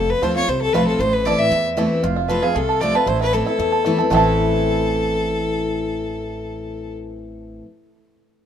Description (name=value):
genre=bluegrass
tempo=231 BPM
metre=4/4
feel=straight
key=A minor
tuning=A4 = 440 Hz
part: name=clear fiddle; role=melody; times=0.0-6.9 s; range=G#4 to E5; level=-21 LUFS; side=left 2 dB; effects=none
part: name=picked steel-string acoustic guitar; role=accompaniment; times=0.0-7.7 s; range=E2 to F4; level=-22 LUFS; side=left 1 dB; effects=none
part: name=upright bass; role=bass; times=0.0-7.6 s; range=F1 to E2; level=-28 LUFS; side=right 1 dB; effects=none
part: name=bluegrass banjo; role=melody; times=0.2-7.7 s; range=A3 to A4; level=-22 LUFS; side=right 6 dB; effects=none
room=moderate plate reverb, RT60 2.8 s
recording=minimal, uncompressed stereo recording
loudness=-16 LUFS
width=side -9 dB against mid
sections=0.0-2.0 A section; 2.0-4.1 B section; 4.1-6.2 C section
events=none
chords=0.0 F; 1.0 Am; 2.0 F; 3.1 Am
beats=0.22 0.48 0.74 | 1.00 1.25 1.51 1.77 | 2.03 2.29 2.55 2.81 | 3.07 3.33 3.59 3.85 | 4.11 4.37 4.63 4.89 | 5.15 5.41 5.67 5.93